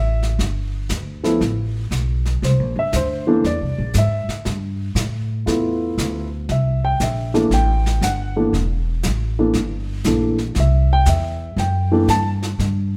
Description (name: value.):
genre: jazz piano trio.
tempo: 118 BPM.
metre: 4/4.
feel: swing 67% on 8ths.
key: unclear.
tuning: A4 = 440 Hz.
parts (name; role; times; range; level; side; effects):
dark baby grand piano; melody; 0.0-12.3 s; E3 to A5; -23 LUFS; equal; none.
upright bass; bass; 0.0-13.0 s; E1 to A2; -22 LUFS; equal; none.
jazz brush drum kit; drums; 0.2-13.0 s; brushed snare drum, hi-hat, snare drum; -32 LUFS; equal; none.
room: moderate stone room reverb, RT60 1.2 s.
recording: band playing live in one room.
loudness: -20 LUFS.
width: mono.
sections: 0.0-13.0 A section.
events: none.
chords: 0.0 Gadd9; 2.4 C9; 4.5 G13; 6.5 C13.